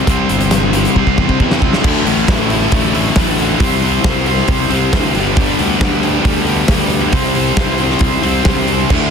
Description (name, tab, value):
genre	quiet-loud alternative rock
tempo	136 BPM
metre	4/4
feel	straight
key	unclear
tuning	A4 = 441 Hz
part	fuzz guitar	riff	0.0-9.1 s	D2 to C5	-18 LUFS	left 14 dB	distortion
part	heavy high-gain guitar	riff	0.0-9.1 s	D2 to C4	-21 LUFS	equal	distortion
part	tight distorted guitar	riff	0.0-9.1 s	D2 to C5	-19 LUFS	right 14 dB	distortion
part	fuzz fingered electric bass	bass	0.0-9.1 s	G1 to C3	-19 LUFS	equal	overdrive
part	big rock drum kit	drums	0.1-9.0 s	crash cymbal, hi-hat, kick drum, snare drum	-16 LUFS	equal	none
room	light reverb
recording	dense, heavily limited modern master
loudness	-11 LUFS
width	side -6 dB against mid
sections	0.0-1.8 A section; 1.8-9.1 B section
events	drum fill 1.0-1.8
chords	0.0 C; 1.8 Dsus2; 3.6 C; 5.1 G; 7.1 C